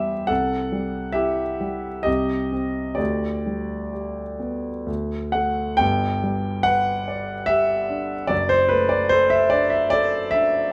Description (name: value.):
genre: classical, romantic nocturne for solo piano.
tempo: 62-75 BPM.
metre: 3/4.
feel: rubato.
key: G major.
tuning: A4 = 440 Hz.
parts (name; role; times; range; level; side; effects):
warm concert grand piano; solo; 0.0-10.7 s; F#1 to G5; -22 LUFS; equal; none.
room: moderate large studio reverb, RT60 0.9 s.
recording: none.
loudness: -22 LUFS.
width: mono.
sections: 0.0-5.8 A section; 5.8-10.7 B section.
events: none.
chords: 0.3 C; 2.1 Cm; 3.0 G/D; 4.9 D; 5.8 G; 8.3 D/F#.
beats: | 0.30 1.16 2.06 | 2.99 3.94 4.88 | 5.81 6.66 7.49 | 8.31 9.13 9.93.